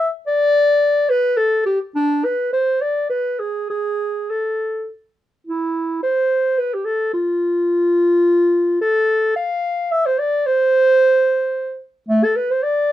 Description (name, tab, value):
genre	classical, baroque-style fantasia for unaccompanied clarinet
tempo	108 BPM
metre	3/4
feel	rubato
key	A minor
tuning	A4 = 440 Hz
part	dark clarinet	solo	0.0-12.9 s	A3 to F5	-16 LUFS	equal	none
room	light reverb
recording	none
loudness	-16 LUFS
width	side -13 dB against mid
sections	0.0-5.5 A section; 5.5-12.9 A section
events	none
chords	none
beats	| 0.28 0.83 1.38 | 1.96 2.53 3.10 | 3.70 4.30 4.88 | 5.47 6.03 6.59 | 7.14 7.69 8.25 | 8.81 9.36 9.91 | 10.46 10.99 11.54 | 12.09 12.63